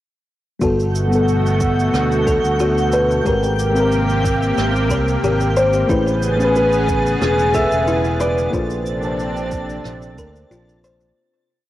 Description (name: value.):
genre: sunset chillout.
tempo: 91 BPM.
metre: 4/4.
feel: straight.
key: unclear.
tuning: A4 = 440 Hz.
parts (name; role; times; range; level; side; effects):
mellow FM electric piano; accompaniment; 0.6-11.2 s; G3 to A5; -22 LUFS; left 1 dB; chorus, auto-pan, tape echo.
lush unison pad; sustained chords; 0.6-11.1 s; B2 to G#4; -21 LUFS; right 1 dB; chorus.
buzzing kalimba; arpeggios; 0.6-11.1 s; E4 to C5; -22 LUFS; left 1 dB; tape echo.
fingered electric bass; bass; 0.6-11.1 s; E1 to D2; -21 LUFS; right 1 dB; none.
cabasa and rim click; drums; 0.6-11.1 s; none; -32 LUFS; right 2 dB; cassette tape.
electronic kick drum; drums; 0.6-10.3 s; none; -24 LUFS; equal; cassette tape.
twinkling granular texture; texture; 0.9-11.2 s; G6 to A6; -32 LUFS; right 1 dB; built-in reverb.
nylon-string guitar; melody; 6.6-10.5 s; G#4 to E5; -21 LUFS; left 1 dB; cassette tape, tape echo.
room: wet spring reverb, RT60 1.6 s, small room ambience.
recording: home recording on cassette.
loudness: -15 LUFS.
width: side -14 dB against mid.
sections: 0.6-11.2 groove.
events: fade-out 7.7-11.2.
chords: 0.6 Gmaj9; 3.3 Abmaj9; 5.9 Amaj9; 8.5 Bbmaj9.